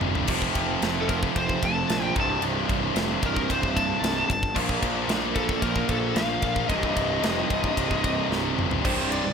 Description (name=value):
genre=heavy metal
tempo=112 BPM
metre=4/4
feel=straight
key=C dorian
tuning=A4 = 440 Hz
part: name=phased analog pad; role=sustained chords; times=0.0-9.3 s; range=C3 to C5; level=-39 LUFS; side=right 1 dB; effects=none
part: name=heavy high-gain guitar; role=riff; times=0.0-9.3 s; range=C2 to F3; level=-30 LUFS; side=left 14 dB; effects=distortion
part: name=high-gain distorted guitar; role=riff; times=0.0-9.3 s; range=C2 to Bb3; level=-30 LUFS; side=right 13 dB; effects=distortion
part: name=raw garage guitar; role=riff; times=0.0-9.3 s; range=C2 to Bb3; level=-32 LUFS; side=equal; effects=overdrive
part: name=fuzz picked electric bass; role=bass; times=0.0-9.3 s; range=C1 to Bb1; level=-31 LUFS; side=equal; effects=overdrive
part: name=tight metal drum kit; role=drums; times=0.0-9.2 s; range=crash cymbal, kick drum, ride cymbal, snare drum, toms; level=-29 LUFS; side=equal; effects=none
part: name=high-gain lead guitar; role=melody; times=1.0-9.3 s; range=A4 to A5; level=-29 LUFS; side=left 2 dB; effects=distortion, tape echo
room=small room ambience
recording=none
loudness=-22 LUFS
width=side -6 dB against mid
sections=0.0-8.8 A section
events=drum fill 0.0, 8.3-8.8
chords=0.3 F; 2.2 Cm; 4.6 Bb; 6.7 Cm